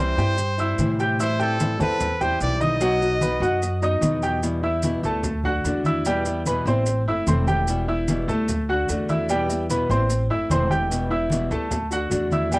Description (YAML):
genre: latin, Cuban son and guajira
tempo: 148 BPM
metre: 4/4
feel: straight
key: E minor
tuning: A4 = 440 Hz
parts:
  - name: brilliant trumpet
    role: melody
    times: 0.0-4.0 s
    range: A4 to D#5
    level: -27 LUFS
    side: equal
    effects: cassette tape, analog delay
  - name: nylon-string guitar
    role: accompaniment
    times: 0.0-12.6 s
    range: B2 to F#4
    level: -27 LUFS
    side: left 2 dB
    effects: cassette tape
  - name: bright grand piano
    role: arpeggios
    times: 0.0-12.6 s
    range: F#3 to G6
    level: -24 LUFS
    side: right 1 dB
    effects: cassette tape
  - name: upright bass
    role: bass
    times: 0.0-12.6 s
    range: E1 to A2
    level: -26 LUFS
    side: equal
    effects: none
  - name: congas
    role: percussion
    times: 0.2-12.6 s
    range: none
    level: -27 LUFS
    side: equal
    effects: none
  - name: maracas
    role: percussion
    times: 0.2-12.6 s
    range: none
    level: -35 LUFS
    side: right 2 dB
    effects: none
room: moderate booth ambience, RT60 0.3 s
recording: home recording on cassette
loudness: -20 LUFS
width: side -23 dB against mid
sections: 0.0-4.4 A section; 4.4-12.6 B section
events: none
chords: 0.0 C; 1.2 Am7; 2.8 B; 4.4 Em; 5.2 D; 6.1 Em; 6.9 Am; 7.7 Em; 8.5 D; 9.3 Em; 10.1 Am; 10.9 Em; 11.7 D